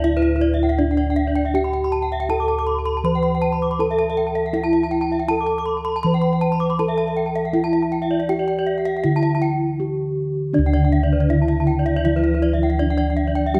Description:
gamelan; 80 BPM; 4/4; straight; D slendro; A4 = 438 Hz
gamelan-type bronze metallophone; melody; 0.0-13.6 s; D4 to C5-45c; -24 LUFS; equal
gamelan-type bronze metallophone; arpeggios; 0.0-13.6 s; D5 to C6-45c; -29 LUFS; equal
gamelan-type bronze metallophone; arpeggios; 0.0-13.6 s; C5-45c to D6; -31 LUFS; equal
gamelan-type bossed gongs; bass; 0.0-13.6 s; D2 to G4-35c; -24 LUFS; equal
gamelan-type bronze metallophone; accompaniment; 10.6-13.6 s; D3 to G3-35c; -26 LUFS; equal
moderate recital hall reverb, RT60 1.4 s; -20 LUFS; mono
0.0-13.6 A section
break 9.4-10.5

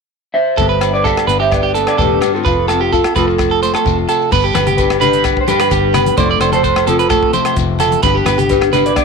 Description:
highlife guitar band; 129 BPM; 4/4; straight; G mixolydian; A4 = 441 Hz
electric guitar at the edge of break-up; melody; 0.3-9.0 s; F4 to F5; -16 LUFS; equal; lush chorus
nylon-string guitar; accompaniment; 0.6-9.0 s; E2 to G4; -20 LUFS; left 12 dB
electric guitar at the edge of break-up; arpeggios; 0.6-9.0 s; G4 to D5; -16 LUFS; right 9 dB; tape echo
fingered electric bass; bass; 0.6-9.0 s; E1 to G1; -20 LUFS; left 1 dB
tight funk drum kit; drums; 0.6-9.0 s; crash cymbal, hi-hat, kick drum, rim click; -22 LUFS; left 1 dB
shekere; percussion; 0.6-9.0 s; -28 LUFS; left 10 dB
agogo bells; percussion; 0.8-9.0 s; -24 LUFS; left 18 dB
congas; percussion; 4.5-8.8 s; -24 LUFS; left 9 dB
light reverb, small room ambience; 1960s-style stereo with parts hard left and right; -11 LUFS; side -4 dB against mid
0.6-4.3 A section; 4.3-9.0 B section
0.0 N.C.; 0.6 G; 2.5 F; 4.3 G; 6.2 F; 8.0 G

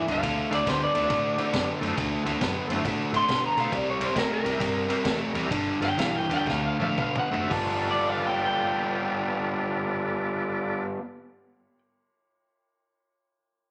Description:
electric blues shuffle; 110-138 BPM; 4/4; swing 66% on 8ths; G mixolydian; A4 = 440 Hz
electric guitar through a small old amp; melody; 0.0-11.8 s; Bb4 to C6; -30 LUFS; equal; spring reverb
biting overdriven guitar; riff; 0.0-11.0 s; G2 to A4; -30 LUFS; equal
tonewheel organ; accompaniment; 0.1-10.8 s; D4 to E5; -36 LUFS; equal; slow rotary speaker, overdrive
vintage muted fingered electric bass; bass; 0.1-10.8 s; F#1 to B2; -40 LUFS; equal
vintage drum kit; drums; 0.1-7.7 s; hi-hat, kick drum, ride cymbal, snare drum, toms; -35 LUFS; equal
moderate large studio reverb, RT60 1.2 s; -27 LUFS; mono
0.0-7.5 A section; 7.5-11.9 B section
slowing down 3.7-7.5; drum fill 6.5-7.5
0.2 D9; 3.7 C9; 5.5 G9; 6.5 D9; 7.5 G9

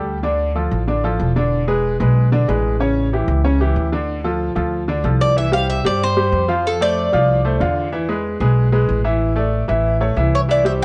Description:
latin, salsa; 187 BPM; 4/4; straight; D minor; A4 = 440 Hz
bright upright piano; accompaniment; 0.0-10.8 s; C#3 to F5; -22 LUFS; equal
upright bass; bass; 0.0-10.8 s; E1 to G2; -21 LUFS; equal
Cuban tres; melody; 5.2-7.7, 10.3-10.8 s; A4 to F5; -21 LUFS; equal
light reverb; worn, warbling old tape, cassette tape, warbly pitch drift, nothing above 10.3 kHz; -18 LUFS; mono
0.0-5.4 A section; 5.4-10.8 B section
0.2 Dm; 1.5 E7; 2.8 A7; 4.1 Dm7; 5.4 C; 6.6 F6; 7.9 E; 9.2 Asus4; 9.9 A

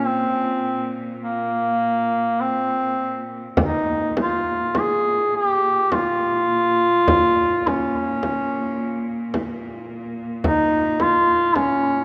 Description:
caucasian folk, Caucasian lament; 52 BPM; 3/4; uneven beats, rubato; Bb dorian; A4 = 440 Hz
clear duduk; melody; 0.0-12.0 s; Bb3 to Ab4; -21 LUFS; equal
clear chamber cello section; drone; 0.0-12.0 s; Bb2; -32 LUFS; equal
frame drum; percussion; 3.6-11.8 s; -28 LUFS; equal
wet church reverb, RT60 2.9 s; -21 LUFS; mono
0.0-12.0 A section

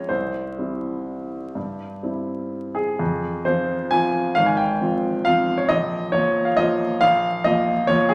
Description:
classical, piano waltz; 120-140 BPM; 3/4; rubato; F minor; A4 = 441 Hz
warm baby grand piano; solo; 0.0-8.1 s; Ab1 to Ab5; -22 LUFS; equal
wet recital hall reverb, RT60 1.4 s; vinyl crackle; -22 LUFS; mono
0.0-3.0 A section; 3.0-8.1 B section
0.1 C; 3.0 Fm; 4.4 Fm/Ab; 5.7 Bb5

